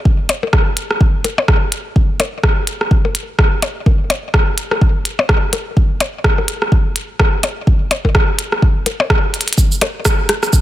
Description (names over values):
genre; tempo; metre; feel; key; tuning
techno; 126 BPM; 4/4; swing 58% on 16ths; none; none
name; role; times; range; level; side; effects
electronic kick drum; drums; 0.1-10.6 s; none; -13 LUFS; equal; none
minimal click drum kit; drums; 0.3-10.6 s; hi-hat, rim click, shaker; -19 LUFS; equal; none
electronic percussion blips and rim click; percussion; 0.3-10.4 s; none; -19 LUFS; left 3 dB; digital delay
room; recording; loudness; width
little or no reverb; none; -13 LUFS; side -14 dB against mid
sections
0.0-10.6 A section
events
drum fill 9.3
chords
none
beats
| 0.05 0.53 1.00 1.48 | 1.96 2.43 2.91 3.39 | 3.86 4.34 4.82 5.29 | 5.77 6.24 6.72 7.20 | 7.67 8.15 8.62 9.10 | 9.58 10.05 10.53